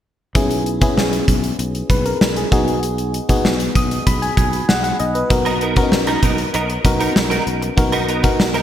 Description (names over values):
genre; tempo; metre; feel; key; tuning
1980s-style pop; 97 BPM; 4/4; straight; unclear; A4 = 440 Hz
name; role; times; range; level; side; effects
FM electric piano; accompaniment; 0.3-8.6 s; B3 to D#6; -20 LUFS; left 2 dB; chorus
sustaining fretless electric bass; bass; 0.4-8.6 s; B1; -24 LUFS; equal; none
gated 80s drum kit; drums; 0.4-8.6 s; hi-hat, kick drum, snare drum; -18 LUFS; equal; none
direct-recorded clean electric guitar; riff; 5.3-8.6 s; B3 to A#4; -22 LUFS; right 3 dB; ensemble chorus, digital delay
room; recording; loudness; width
moderate lush hall reverb, RT60 1.8 s; bright 1980s-style digital production; -15 LUFS; side -10 dB against mid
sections
0.4-8.6 A section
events
FM electric piano fill 3.4-5.3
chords
0.4 C#m7/B; 2.5 G#m7/B; 5.3 Bmaj7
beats
| 0.35 0.97 1.59 2.21 | 2.83 3.45 4.07 4.68 | 5.30 5.92 6.54 7.16 | 7.78 8.39